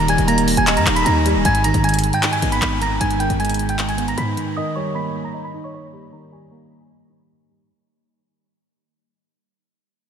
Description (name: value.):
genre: hip hop, trap.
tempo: 154 BPM.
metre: 4/4.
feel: half-time.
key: G# harmonic minor.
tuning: A4 = 440 Hz.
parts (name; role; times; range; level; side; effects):
delicate synth tine bell; melody; 0.0-7.7 s; C#5 to B6; -22 LUFS; right 1 dB; chorus, low-pass filter.
tine electric piano; accompaniment; 0.0-7.7 s; G#2 to D#5; -21 LUFS; right 1 dB; overdrive, lush chorus, low-pass filter.
hard-hitting 808-style bass; bass; 0.0-4.4 s; C#1 to G#2; -22 LUFS; left 1 dB; none.
trap drum kit; drums; 0.1-4.5 s; handclaps, hi-hat; -23 LUFS; left 1 dB; none.
room: moderate huge ambient reverb, RT60 6.0 s.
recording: dreamy mix soaked in reverb.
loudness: -16 LUFS.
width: side -8 dB against mid.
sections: 0.0-1.4 A section; 1.4-7.7 B section.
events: fade-out 1.4-7.7; filter sweep 1.4-7.7.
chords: 0.0 D#; 1.4 G#m; 4.6 D#.